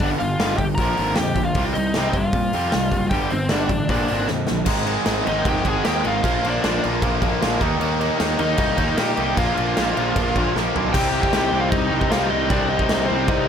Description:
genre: punk rock.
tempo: 154 BPM.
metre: 4/4.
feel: straight.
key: C minor.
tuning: A4 = 442 Hz.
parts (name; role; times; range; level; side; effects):
biting lead guitar; melody; 0.0-13.5 s; C4 to Bb5; -24 LUFS; left 1 dB; overdrive.
distorted electric guitar; riff; 0.0-13.5 s; G2 to Ab4; -26 LUFS; left 12 dB; overdrive.
distorted electric guitar; riff; 0.0-13.5 s; G2 to Eb4; -26 LUFS; right 13 dB; overdrive.
fuzz picked electric bass; bass; 0.0-13.5 s; F1 to Bb2; -26 LUFS; equal; overdrive.
big rock drum kit; drums; 0.0-13.4 s; crash cymbal, hi-hat, kick drum, snare drum, toms; -24 LUFS; equal; none.
tight distorted guitar; riff; 4.7-13.5 s; Ab2 to Eb4; -28 LUFS; left 1 dB; distortion.
room: light reverb.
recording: none.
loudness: -18 LUFS.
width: side -8 dB against mid.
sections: 0.0-4.7 A section; 4.7-10.9 B section; 10.9-13.5 C section.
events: drum fill 4.3-4.7, 10.6-10.9.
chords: 0.0 G5; 0.8 Bb; 1.6 Cm; 3.1 G5; 3.9 Bb; 4.7 Ab; 6.2 Bb; 7.6 Eb; 9.4 Bb; 10.9 Cm.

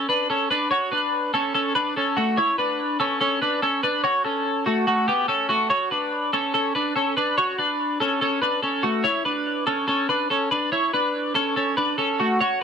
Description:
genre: indie pop.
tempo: 144 BPM.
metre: 4/4.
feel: straight.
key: D major.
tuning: A4 = 441 Hz.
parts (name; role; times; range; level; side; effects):
twelve-string electric guitar; solo; 0.0-12.6 s; A3 to C#5; -20 LUFS; equal; wide subtle chorus.
room: wet studio reverb, RT60 0.5 s.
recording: dark, warm production.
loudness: -20 LUFS.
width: side -7 dB against mid.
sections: 0.0-5.7 A section; 5.7-12.6 B section.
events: none.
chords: 0.0 Dmaj7; 2.4 Bm11; 4.0 A69; 5.7 Dmaj7; 9.0 F#m7 (rootless).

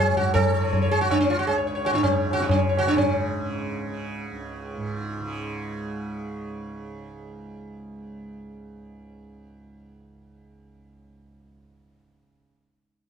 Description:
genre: indian classical, Hindustani.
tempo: 161 BPM.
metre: 7/4.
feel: straight.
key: unclear.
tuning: A4 = 440 Hz.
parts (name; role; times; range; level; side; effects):
sitar; melody; 0.0-6.5 s; C#4 to C#5; -24 LUFS; equal; none.
tanpura; drone; 0.0-12.4 s; C#2 to C#3; -34 LUFS; right 3 dB; none.
tabla; percussion; 0.2-3.1 s; none; -24 LUFS; equal; none.
room: moderate studio reverb, RT60 0.6 s.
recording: dark, warm production.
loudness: -22 LUFS.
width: side -7 dB against mid.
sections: 0.0-3.0 A section; 3.0-5.6 B section.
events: none.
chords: none.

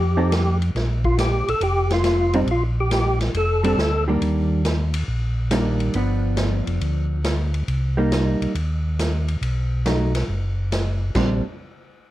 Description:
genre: soul jazz organ trio.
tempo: 139 BPM.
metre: 4/4.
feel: swing 68% on 8ths.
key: Bb major.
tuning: A4 = 438 Hz.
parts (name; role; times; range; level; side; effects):
percussive tonewheel organ; melody; 0.0-4.0 s; Eb4 to A4; -22 LUFS; equal; slow rotary speaker, overdrive, chorus vibrato.
mellow tonewheel organ; bass; 0.0-11.4 s; F1 to F2; -22 LUFS; equal; chorus vibrato, slow rotary speaker.
vintage hollow-body jazz guitar; accompaniment; 0.2-11.4 s; Eb3 to A4; -23 LUFS; right 1 dB; none.
swinging big-band drum kit; drums; 0.3-11.3 s; crash cymbal, hi-hat, kick drum, ride cymbal, snare drum; -28 LUFS; equal; none.
room: light reverb.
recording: worn, warbling old tape, cassette tape, warbly pitch drift.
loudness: -19 LUFS.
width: side -15 dB against mid.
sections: 0.0-4.2 A section; 4.2-11.1 B section.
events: none.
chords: 0.0 F7; 0.7 Bb6; 4.2 Ebmaj7; 5.9 G7; 7.7 Cm7; 9.4 B7; 11.1 Bb69.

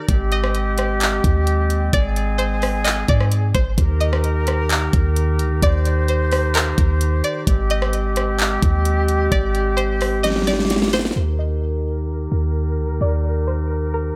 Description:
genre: hip hop, atmospheric cloud-rap.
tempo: 130 BPM.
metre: 4/4.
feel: half-time.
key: Eb major.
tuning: A4 = 436 Hz.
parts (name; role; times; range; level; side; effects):
string-like resonator pluck; melody; 0.0-14.2 s; Bb4 to Eb5; -28 LUFS; equal; chorus, phaser, low-pass filter, delay.
warm woodwind section; sustained chords; 0.0-14.2 s; Eb3 to C5; -25 LUFS; equal; sidechain pumping, low-pass filter.
clean 808-style bass; bass; 0.1-14.1 s; Ab1 to Ab2; -22 LUFS; equal; none.
smooth R&B drum kit; drums; 0.1-11.2 s; handclaps, hi-hat, kick drum, rim click, snare drum; -23 LUFS; equal; none.
room: light reverb, digital ambience.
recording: none.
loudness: -19 LUFS.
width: mono.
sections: 0.0-11.2 A section; 11.2-14.2 B section.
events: drum fill 10.2-11.2; filter sweep 11.2-14.2.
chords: 0.1 Abmaj7; 3.8 Eb; 7.5 Abmaj7; 11.2 Eb.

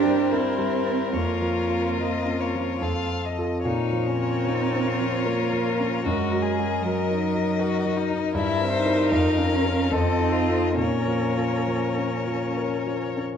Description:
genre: classical, slow romantic movement for piano quintet.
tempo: 66-80 BPM.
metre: 3/4.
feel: rubato.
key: Bb minor.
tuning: A4 = 440 Hz.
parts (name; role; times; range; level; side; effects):
rich violin; melody; 0.0-13.0 s; Db4 to C5; -29 LUFS; left 8 dB; none.
rich cello; second line; 0.0-12.5 s; Gb3 to Eb4; -27 LUFS; right 5 dB; none.
rich violin; second line; 0.0-13.2 s; C5 to F5; -31 LUFS; left 6 dB; none.
warm grand piano; accompaniment; 0.0-13.4 s; F2 to Bb4; -25 LUFS; left 1 dB; none.
warm viola; accompaniment; 0.0-13.2 s; A4 to Bb4; -33 LUFS; equal; none.
room: moderate recital hall reverb, RT60 1.5 s.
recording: dark, warm production.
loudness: -22 LUFS.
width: side -8 dB against mid.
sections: 0.0-13.4 A section.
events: none.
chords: 0.0 C7/G; 1.1 Bbm/F; 2.8 F; 3.7 Bbm; 6.1 Ebm/Gb; 8.4 C7/G; 9.1 Bbm/F; 9.9 F7; 10.8 Bbm.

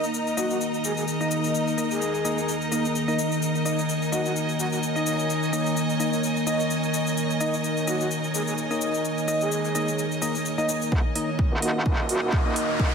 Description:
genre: bass house.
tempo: 128 BPM.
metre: 4/4.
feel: swing 56% on 16ths.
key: unclear.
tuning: A4 = 440 Hz.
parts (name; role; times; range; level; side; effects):
deep dark ambient pad; sustained chords; 0.0-12.9 s; Eb3 to Eb5; -27 LUFS; equal; chorus, built-in reverb, sidechain pumping.
percussive organ stab; stabs; 0.0-12.9 s; Bb3 to Eb5; -29 LUFS; left 1 dB; lush chorus, sidechain pumping, ping-pong delay.
electronic shaker and hi-hat; drums; 0.0-12.7 s; none; -33 LUFS; left 4 dB; none.
clear studio string section; texture; 0.0-12.9 s; Eb4 to Bb5; -31 LUFS; right 1 dB; sidechain pumping.
breathy flute-like synth lead; melody; 0.4-4.8, 7.9-12.3 s; Gb4 to Ab4; -32 LUFS; right 1 dB; lush chorus, ping-pong delay.
metallic wobble bass; bass; 10.9-12.9 s; Eb1; -27 LUFS; equal; chorus, sidechain pumping, high-pass filter.
electronic kick drum; drums; 10.9-12.9 s; none; -23 LUFS; equal; none.
riser; sound effects; 11.5-12.9 s; none; -32 LUFS; left 1 dB; none.
room: wet lush hall reverb, RT60 1.9 s.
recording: dreamy mix soaked in reverb.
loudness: -22 LUFS.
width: side -6 dB against mid.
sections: 0.0-10.9 A section; 10.9-12.9 B section.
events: build-up 10.9-12.9; filter sweep on synth stab 10.9-12.9; riser 11.5-12.9.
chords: 0.0 Eb5.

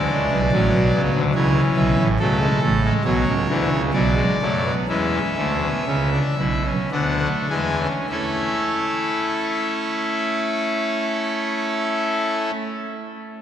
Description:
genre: classical, baroque-style 4-part fugue for pipe organ.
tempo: 49-73 BPM.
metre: 3/4.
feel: straight.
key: A major.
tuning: A4 = 438 Hz.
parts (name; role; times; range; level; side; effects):
pipe organ, trumpet; solo; 0.0-12.5 s; A1 to G#5; -18 LUFS; equal; none.
room: wet cathedral reverb, RT60 4.4 s.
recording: none.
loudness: -18 LUFS.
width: side -9 dB against mid.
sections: 0.0-8.1 A section; 8.1-11.8 B section.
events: slowing down 0.9-8.1.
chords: 0.0 E7 (rootless); 1.4 A/C#; 2.2 A; 4.0 Bm; 4.9 E7; 8.1 A.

